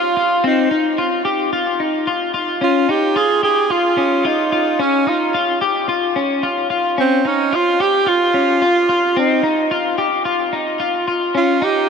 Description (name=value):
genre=dream pop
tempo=110 BPM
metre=4/4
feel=straight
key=unclear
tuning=A4 = 441 Hz
part: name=breathy alto saxophone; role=melody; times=0.0-11.9 s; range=C4 to Ab4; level=-18 LUFS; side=right 4 dB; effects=ping-pong delay
part: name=electric guitar at the edge of break-up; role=arpeggios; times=0.0-11.9 s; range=C4 to G4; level=-17 LUFS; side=left 4 dB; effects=analog chorus, ping-pong delay
room=wet huge ambient reverb, RT60 7.8 s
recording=none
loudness=-14 LUFS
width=side -6 dB against mid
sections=0.0-11.9 A section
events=none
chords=0.4 Fsus2; 2.6 Dbadd9; 9.2 Fsus2; 11.3 Dbadd9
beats=| 0.43 0.98 1.53 2.07 | 2.62 3.16 3.71 4.25 | 4.80 5.34 5.89 6.43 | 6.98 7.53 8.07 8.62 | 9.16 9.71 10.25 10.80 | 11.34